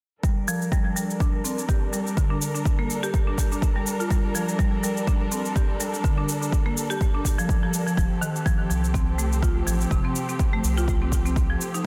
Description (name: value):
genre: afro house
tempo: 124 BPM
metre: 4/4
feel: swing 55% on 16ths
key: G minor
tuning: A4 = 440 Hz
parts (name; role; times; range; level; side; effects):
- muted studio string section; sustained chords; 0.2-11.9 s; F3 to Bb4; -34 LUFS; equal; sidechain pumping, low-pass filter
- buzzing marimba with hard mallets; arpeggios; 0.2-11.8 s; C3 to G4; -30 LUFS; equal; sidechain pumping, low-pass filter, tape echo
- electronic kick drum; drums; 0.2-11.5 s; none; -25 LUFS; equal; overdrive
- shaker; drums; 0.2-11.8 s; none; -35 LUFS; equal; overdrive
- round analog bass; bass; 8.0-11.6 s; F1 to C2; -27 LUFS; equal; sidechain pumping
room: light reverb, digital ambience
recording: dense, heavily limited modern master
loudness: -24 LUFS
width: mono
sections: 0.2-11.9 A section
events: none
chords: 0.2 Gm; 8.0 F